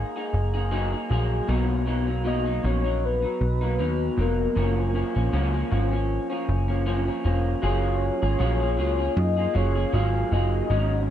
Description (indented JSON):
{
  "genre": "indie pop, bedroom pop",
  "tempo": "78 BPM",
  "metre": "4/4",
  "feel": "swing 55% on 16ths",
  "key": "F# major",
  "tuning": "A4 = 439 Hz",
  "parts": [
    { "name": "electric guitar through a small old amp", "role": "accompaniment", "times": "0.0-11.1 s", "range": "F#2 to G#4", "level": "-27 LUFS", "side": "left 1 dB", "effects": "analog chorus, warbly pitch drift" },
    { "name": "plucky analog bass", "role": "bass", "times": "0.0-11.1 s", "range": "E#1 to F#2", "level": "-24 LUFS", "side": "equal", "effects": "none" },
    { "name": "soft octave-layered synth lead", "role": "melody", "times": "2.3-11.1 s", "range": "A#4 to E#5", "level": "-29 LUFS", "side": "left 2 dB", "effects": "lush chorus" }
  ],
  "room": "light reverb",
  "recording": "dark, warm production, nothing above 10.4 kHz",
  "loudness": "-22 LUFS",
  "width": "side -10 dB against mid",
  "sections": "0.0-7.6 A section; 7.6-11.1 B section",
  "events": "none",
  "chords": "0.0 F#69; 1.5 Bmaj7; 4.6 F#maj7; 7.6 F#maj9"
}